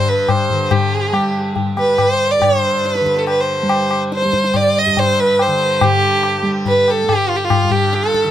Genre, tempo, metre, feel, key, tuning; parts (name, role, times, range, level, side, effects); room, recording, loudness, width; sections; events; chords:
indian classical, Hindustani; 141 BPM; 3/4; straight; G major; A4 = 442 Hz
rich violin; melody; 0.0-8.3 s; F4 to Eb5; -15 LUFS; right 1 dB; tape echo
tanpura; drone; 0.0-8.3 s; G2 to G3; -22 LUFS; right 2 dB
tabla; percussion; 0.3-8.3 s; -19 LUFS; left 4 dB
little or no reverb; close, detailed microphones; -13 LUFS; side -11 dB against mid
0.0-5.8 A section; 5.8-8.3 B section